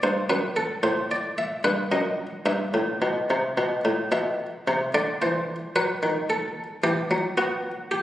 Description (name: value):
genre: classical, baroque-style two-part invention for harpsichord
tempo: 111 BPM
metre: 3/4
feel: straight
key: E minor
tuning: A4 = 440 Hz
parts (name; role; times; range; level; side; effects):
- buff-stop harpsichord; solo; 0.0-8.0 s; F#2 to E5; -23 LUFS; equal; none
room: wet scoring stage reverb, RT60 1.7 s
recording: recorded on a phone in the room, club reverb, compression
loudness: -23 LUFS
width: side -13 dB against mid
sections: 0.0-4.1 A section; 4.1-8.0 B section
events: none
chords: 0.3 F#madd11; 0.8 Amadd11; 1.4 Em; 1.9 D#m/F#; 2.5 Em/G; 4.1 E5/B; 5.2 C/E; 5.8 B7; 6.8 Em; 7.4 B5